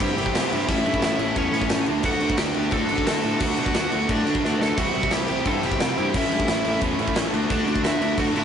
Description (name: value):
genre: punk rock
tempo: 176 BPM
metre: 4/4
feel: straight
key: unclear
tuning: A4 = 441 Hz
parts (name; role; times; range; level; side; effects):
- biting overdriven guitar; melody; 0.0-8.4 s; C#4 to A5; -27 LUFS; equal; none
- crunchy overdriven guitar; riff; 0.0-8.4 s; A2 to F#4; -28 LUFS; left 5 dB; none
- distorted electric guitar; riff; 0.0-8.4 s; A2 to D4; -28 LUFS; right 7 dB; distortion
- high-gain distorted guitar; riff; 0.0-8.4 s; A2 to F#4; -30 LUFS; equal; distortion
- fuzz picked electric bass; bass; 0.0-8.4 s; G1 to D3; -29 LUFS; equal; overdrive
- big rock drum kit; drums; 0.0-8.4 s; crash cymbal, kick drum, snare drum; -25 LUFS; equal; none
room: moderate studio reverb, RT60 0.5 s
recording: rough rehearsal-room recording, warm saturation, nothing above 10.9 kHz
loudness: -20 LUFS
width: side -8 dB against mid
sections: 0.0-8.4 A section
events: drum fill 4.4-4.8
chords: 0.0 C; 0.7 A; 1.9 D; 4.8 C; 6.1 A; 7.3 D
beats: 0.01 0.35 | 0.69 1.03 1.37 1.71 | 2.05 2.39 2.73 3.07 | 3.42 3.75 4.10 4.44 | 4.78 5.12 5.46 5.80 | 6.14 6.48 6.82 7.16 | 7.50 7.84 8.18